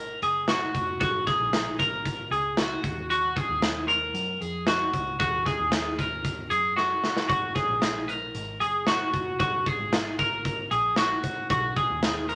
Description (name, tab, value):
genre	jangly indie pop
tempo	114 BPM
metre	4/4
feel	straight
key	F# major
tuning	A4 = 440 Hz
part	twelve-string electric guitar	arpeggios	0.0-12.4 s	F#4 to A#4	-28 LUFS	equal	none
part	vintage muted picked electric bass	bass	0.0-12.4 s	E#1 to F#2	-41 LUFS	equal	none
part	big rock drum kit	drums	0.2-12.4 s	hi-hat, kick drum, snare drum	-31 LUFS	equal	none
room	moderate studio reverb, RT60 0.8 s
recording	none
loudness	-26 LUFS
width	mono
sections	0.0-12.4 A section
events	drum fill 6.8-7.3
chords	0.0 F#; 2.8 D#m; 7.3 F#; 11.5 B